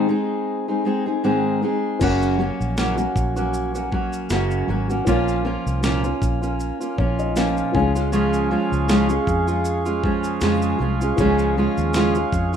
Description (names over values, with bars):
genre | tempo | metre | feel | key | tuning
acoustic pop | 78 BPM | 4/4 | swing 55% on 16ths | Db major | A4 = 440 Hz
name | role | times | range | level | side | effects
fingerpicked steel-string acoustic guitar | accompaniment | 0.0-12.6 s | Gb2 to Ab4 | -20 LUFS | right 1 dB | plate reverb
felt-muted upright piano | accompaniment | 2.0-12.6 s | Db4 to Ab5 | -28 LUFS | left 6 dB | none
vintage muted fingered electric bass | bass | 2.0-12.6 s | Gb1 to F2 | -24 LUFS | equal | none
dusty soul sampler-style drum kit | drums | 2.0-12.6 s | crash cymbal, kick drum, shaker, snare drum | -27 LUFS | equal | none
mellow accordion | sustained chords | 8.1-12.6 s | Ab4 to Db6 | -28 LUFS | right 3 dB | plate reverb
room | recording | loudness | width
moderate studio reverb, RT60 0.7 s | rough home demo mix | -18 LUFS | side -8 dB against mid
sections
0.0-2.0 A section; 2.0-12.6 B section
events
break 0.0-2.0; felt piano fill 6.6-8.1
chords
0.0 Ab; 2.0 Gb; 5.1 Bbm; 7.7 Db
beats
0.48 1.24 | 2.01 2.77 3.54 4.30 | 5.07 5.83 6.60 7.36 | 8.13 8.89 9.65 10.42 | 11.18 11.95